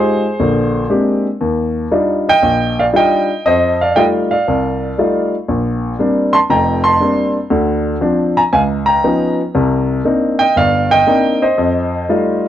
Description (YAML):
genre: solo jazz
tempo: 118 BPM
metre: 4/4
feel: swing 67% on 8ths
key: Bb major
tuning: A4 = 443 Hz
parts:
  - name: warm baby grand piano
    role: solo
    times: 0.0-12.5 s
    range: F1 to C6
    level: -12 LUFS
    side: equal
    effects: none
room: small room ambience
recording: dry, close 1970s-style studio recording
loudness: -12 LUFS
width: side -11 dB against mid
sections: 0.0-12.5 A section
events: none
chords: 0.4 Bb13; 1.4 Ebmaj9; 3.4 F9; 5.5 Bb69; 7.5 Dm7; 8.5 Db9; 9.5 Cm9; 11.6 F9